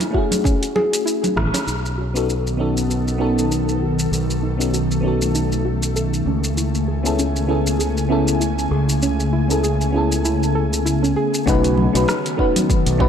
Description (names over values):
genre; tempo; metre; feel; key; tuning
sunset chillout; 98 BPM; 4/4; swing 56% on 16ths; unclear; A4 = 443 Hz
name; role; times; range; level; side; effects
deep house drum kit; drums; 0.0-13.0 s; hi-hat, rim click, shaker; -26 LUFS; equal; none
congas; percussion; 0.0-1.6, 11.8-13.1 s; none; -26 LUFS; right 2 dB; none
mellow FM electric piano; accompaniment; 0.1-13.1 s; A3 to B4; -22 LUFS; moving between left 5 dB and right 2 dB; chorus, phaser, auto-pan, digital delay
soft round pluck; arpeggios; 0.1-11.3 s; C#4 to A4; -25 LUFS; right 2 dB; chorus, vintage 12-bit sampler grit, digital delay
electronic kick drum; drums; 0.1-1.5, 11.5-13.1 s; none; -20 LUFS; equal; none
growling fingered electric bass; bass; 1.4-13.1 s; A1 to C#2; -22 LUFS; equal; overdrive
ethereal airy pad; sustained chords; 2.4-13.1 s; C#3 to G#5; -22 LUFS; left 1 dB; ensemble chorus, built-in reverb
room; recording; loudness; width
moderate lush hall reverb, RT60 2.4 s; dark, warm production; -17 LUFS; side -8 dB against mid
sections
0.0-1.7 A section; 1.7-11.5 B section; 11.5-13.1 C section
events
band accent 1.4-1.7; filter sweep on synth arpeggio sound 1.7-11.5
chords
0.0 F#m9; 1.7 B7; 6.3 Amaj7/C#; 11.5 B7